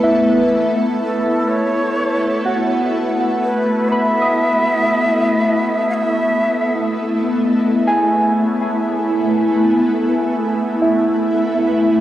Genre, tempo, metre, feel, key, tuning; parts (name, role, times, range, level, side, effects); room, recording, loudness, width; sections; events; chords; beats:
ambient; 61 BPM; 4/4; straight; A lydian; A4 = 440 Hz
shimmering ambient pad; sustained chords; 0.0-12.0 s; A3 to B4; -17 LUFS; equal; chorus, built-in reverb, phaser, cassette tape, shimmer reverb
muted felt-like synth keys; arpeggios; 0.0-12.0 s; B4 to D#6; -20 LUFS; right 1 dB; chorus, cassette tape, shimmer reverb, analog delay
breathy bright shakuhachi; melody; 1.0-12.0 s; A4 to F#5; -21 LUFS; equal; cassette tape, shimmer reverb, analog delay
hand-pumped harmonium; drone; 7.4-12.0 s; barely audible
wet spring reverb, RT60 1.7 s; home recording on cassette; -14 LUFS; side -13 dB against mid
0.0-7.4 A section; 7.4-12.0 A section
0.0 Asus2
0.53 1.49 2.46 | 3.43 4.41 5.39 6.39 | 7.39 8.38 9.36 10.34 | 11.31